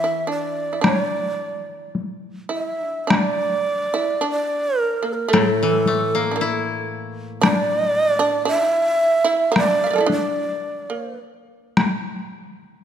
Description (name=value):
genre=japanese traditional, Japanese chamber music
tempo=52-58 BPM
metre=2/4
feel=rubato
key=unclear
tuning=A4 = 440 Hz
part: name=breathy long shakuhachi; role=melody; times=0.0-11.2 s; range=A4 to E5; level=-20 LUFS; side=right 2 dB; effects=none
part: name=shamisen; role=second line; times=0.0-11.2 s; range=A3 to F5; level=-25 LUFS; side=right 2 dB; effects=none
part: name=koto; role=accompaniment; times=0.0-8.5 s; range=A2 to E4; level=-25 LUFS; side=left 5 dB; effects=none
part: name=solo taiko drums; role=percussion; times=0.8-12.0 s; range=none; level=-21 LUFS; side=left 2 dB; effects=none
room=moderate concert hall reverb, RT60 2.0 s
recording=none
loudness=-18 LUFS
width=side -9 dB against mid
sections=0.0-3.1 A section; 3.1-12.8 B section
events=none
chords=none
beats=| 0.84 1.95 | 3.10 4.24 | 5.33 6.39 | 7.42 8.47 | 9.54 10.64 | 11.76